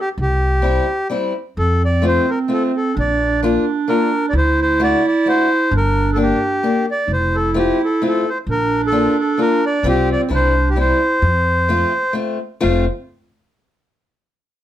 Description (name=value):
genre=alpine folk, alpine dance band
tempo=130 BPM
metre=3/4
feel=straight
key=F major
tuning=A4 = 436 Hz
part: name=accordion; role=melody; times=0.0-12.9 s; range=G4 to F5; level=-19 LUFS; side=equal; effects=none
part: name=upright bass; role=bass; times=0.2-12.9 s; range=F1 to F2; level=-19 LUFS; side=equal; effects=none
part: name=fingerpicked acoustic archtop guitar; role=accompaniment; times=0.6-12.8 s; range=G3 to G4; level=-19 LUFS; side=left 4 dB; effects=none
part: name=warm clarinet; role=second line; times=1.6-12.9 s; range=C4 to E4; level=-20 LUFS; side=right 5 dB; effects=none
room=moderate studio reverb, RT60 0.6 s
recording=none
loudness=-15 LUFS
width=side -12 dB against mid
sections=0.0-12.6 A section; 12.6-14.0 B section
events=none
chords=0.2 C; 1.6 F; 3.0 Bb; 4.3 D7; 5.7 Gm; 7.1 F; 8.5 Bb; 9.8 Csus4; 10.3 C; 11.2 F